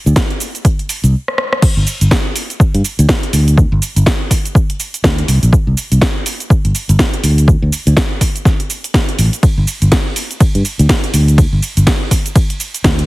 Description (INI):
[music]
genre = deep house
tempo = 123 BPM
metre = 4/4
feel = swing 59% on 16ths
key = G minor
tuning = A4 = 442 Hz
[part]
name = fingered electric bass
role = bass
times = 0.1-13.0 s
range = G1 to G2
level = -11 LUFS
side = equal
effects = sidechain pumping
[part]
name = house drum kit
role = drums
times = 0.1-13.1 s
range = crash cymbal, hi-hat, ride cymbal, rim click, shaker, snare drum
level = -18 LUFS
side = right 1 dB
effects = none
[part]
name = electronic kick drum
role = drums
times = 0.2-13.0 s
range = none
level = -12 LUFS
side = equal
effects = overdrive
[sound]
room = little or no reverb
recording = heavily compressed radio sound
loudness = -11 LUFS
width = side -20 dB against mid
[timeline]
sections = 0.0-1.6 A section; 1.6-13.1 B section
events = stop 1.1-1.6; drum fill 1.3-1.6; drop 1.6-13.1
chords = none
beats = 0.16 0.65 1.14 | 1.62 2.11 2.60 3.09 | 3.58 4.06 4.55 5.04 | 5.53 6.01 6.50 6.99 | 7.48 7.97 8.45 8.94 | 9.43 9.92 10.40 10.89 | 11.38 11.87 12.36 12.84